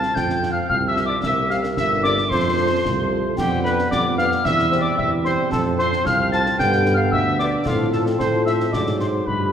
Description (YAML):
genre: military-style march for wind band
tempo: 112 BPM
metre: 2/4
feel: straight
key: unclear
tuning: A4 = 440 Hz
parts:
  - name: mellow trumpet section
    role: melody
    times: 0.0-9.5 s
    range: F4 to A5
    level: -23 LUFS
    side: right 1 dB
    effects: none
  - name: mellow piccolo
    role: second line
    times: 0.0-9.5 s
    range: F5 to A6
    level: -25 LUFS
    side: left 3 dB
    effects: none
  - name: dark trombone section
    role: sustained chords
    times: 0.0-9.5 s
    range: D3 to C4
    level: -27 LUFS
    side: right 1 dB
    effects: none
  - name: mellow tuba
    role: bass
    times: 0.0-9.5 s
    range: G1 to A2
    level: -23 LUFS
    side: right 2 dB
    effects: none
  - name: concert snare drum, concert bass drum and clash cymbals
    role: drums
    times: 0.0-9.5 s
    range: none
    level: -29 LUFS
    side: equal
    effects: none
  - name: dark French horn section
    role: accompaniment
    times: 0.4-9.5 s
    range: G3 to C5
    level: -29 LUFS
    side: left 5 dB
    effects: none
room: wet concert hall reverb, RT60 2.0 s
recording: recorded in a church or concert hall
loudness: -17 LUFS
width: side -8 dB against mid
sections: 0.0-9.5 A section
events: none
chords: 0.0 F5; 1.2 C5; 2.3 F; 3.4 G7/F; 4.4 C/E; 5.5 F5; 6.6 G; 7.7 F/A; 8.7 Ab7